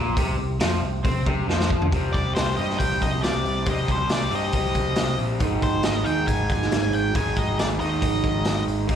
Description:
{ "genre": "blues rock power trio and southern rock", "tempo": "138 BPM", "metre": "4/4", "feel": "straight", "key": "C minor", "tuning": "A4 = 440 Hz", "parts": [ { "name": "raw garage guitar", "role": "riff", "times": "0.0-9.0 s", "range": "Ab2 to Eb4", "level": "-26 LUFS", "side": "right 1 dB", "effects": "overdrive" }, { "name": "overdriven picked electric bass", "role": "bass", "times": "0.0-9.0 s", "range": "Ab1 to C3", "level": "-27 LUFS", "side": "equal", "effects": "none" }, { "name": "raw garage drum kit", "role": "drums", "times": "0.2-9.0 s", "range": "hi-hat, kick drum, snare drum, toms", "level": "-25 LUFS", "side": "equal", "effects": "none" }, { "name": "octave-fuzz lead guitar", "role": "melody", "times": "2.1-8.6 s", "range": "C5 to Ab5", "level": "-28 LUFS", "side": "left 1 dB", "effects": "distortion, slapback echo" } ], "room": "little or no reverb", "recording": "live gig heard through the venue's PA, club reverb", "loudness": "-20 LUFS", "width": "side -8 dB against mid", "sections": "0.0-1.9 A section; 1.9-9.0 B section", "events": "drum fill 1.5-1.9", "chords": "0.0 Bbsus2; 1.9 Cm; 5.4 Ab5" }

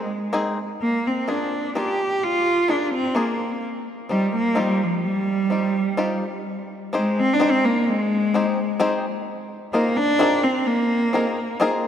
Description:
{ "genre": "musette", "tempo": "128 BPM", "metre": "3/4", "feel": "straight", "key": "unclear", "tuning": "A4 = 440 Hz", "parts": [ { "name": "rich cello", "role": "melody", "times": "0.0-11.6 s", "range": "F3 to G4", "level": "-21 LUFS", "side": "equal", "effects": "tape echo" }, { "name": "bluegrass banjo", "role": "accompaniment", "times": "0.0-11.9 s", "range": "Bb3 to C5", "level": "-25 LUFS", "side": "left 2 dB", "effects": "none" } ], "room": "wet plate reverb, RT60 3.0 s", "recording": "dreamy mix soaked in reverb", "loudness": "-19 LUFS", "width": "side -9 dB against mid", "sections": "0.0-6.5 A section; 6.5-11.9 A section", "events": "none", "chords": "0.0 Bb9sus4; 0.8 Bb7; 3.6 Eb69; 6.5 Abmaj7; 9.3 Bb9sus4" }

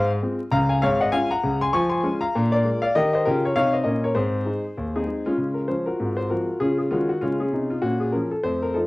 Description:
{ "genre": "jazz, stride piano", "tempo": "197 BPM", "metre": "4/4", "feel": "swing 60% on 8ths", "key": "Db major", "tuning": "A4 = 436 Hz", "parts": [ { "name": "clear concert grand piano", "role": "solo", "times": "0.0-8.9 s", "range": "Ab1 to Db6", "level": "-20 LUFS", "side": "left 1 dB", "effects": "cassette tape" } ], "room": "wet studio reverb, RT60 0.6 s", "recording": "home recording on cassette, vinyl crackle", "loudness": "-20 LUFS", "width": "side -20 dB against mid", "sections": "0.0-5.4 A section; 5.4-8.9 B section", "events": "none", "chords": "0.0 Fm/Ab; 0.5 Db; 1.7 Db/F; 2.3 Bb7; 3.0 Eb7; 4.2 Ab; 5.4 Db; 6.0 Ab13; 6.6 Db; 7.8 Bbm" }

